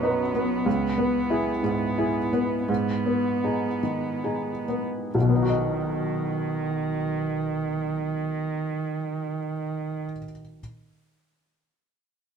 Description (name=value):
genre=neoclassical piano and strings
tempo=66-95 BPM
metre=3/4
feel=rubato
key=B major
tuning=A4 = 440 Hz
part: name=muted cello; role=second line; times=0.0-10.0 s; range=D#3 to B3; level=-28 LUFS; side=right 4 dB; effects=none
part: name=felt-muted upright piano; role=accompaniment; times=0.0-10.6 s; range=B1 to D#5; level=-25 LUFS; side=left 1 dB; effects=none
room=moderate stone room reverb, RT60 1.0 s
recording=band playing live in one room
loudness=-24 LUFS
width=side -7 dB against mid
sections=0.0-5.1 A section; 5.1-10.6 B section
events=slowing down 0.0-5.1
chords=0.0 B; 0.7 C#m7; 2.7 G#m; 5.1 B